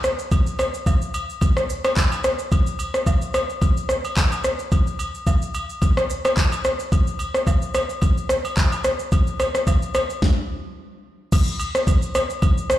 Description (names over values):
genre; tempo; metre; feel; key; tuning
amapiano; 109 BPM; 4/4; swing 55% on 16ths; none; none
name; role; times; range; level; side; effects
smooth R&B drum kit; drums; 0.0-12.8 s; crash cymbal, handclaps, kick drum, rim click, shaker, snare drum; -19 LUFS; equal; none
agogo bells and woodblock; percussion; 0.3-12.6 s; none; -30 LUFS; left 1 dB; none
room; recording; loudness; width
light reverb, digital ambience; played on a big sound system in a bare room, large studio reverb; -18 LUFS; side -13 dB against mid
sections
0.0-11.3 A section; 11.3-12.8 B section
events
stop 10.2-11.3; drop 11.3-12.8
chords
none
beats
| 0.31 0.86 1.42 1.97 | 2.52 3.07 3.62 4.17 | 4.72 5.27 5.82 6.37 | 6.92 7.47 8.02 8.57 | 9.12 9.67 10.22 10.77 | 11.32 11.87 12.42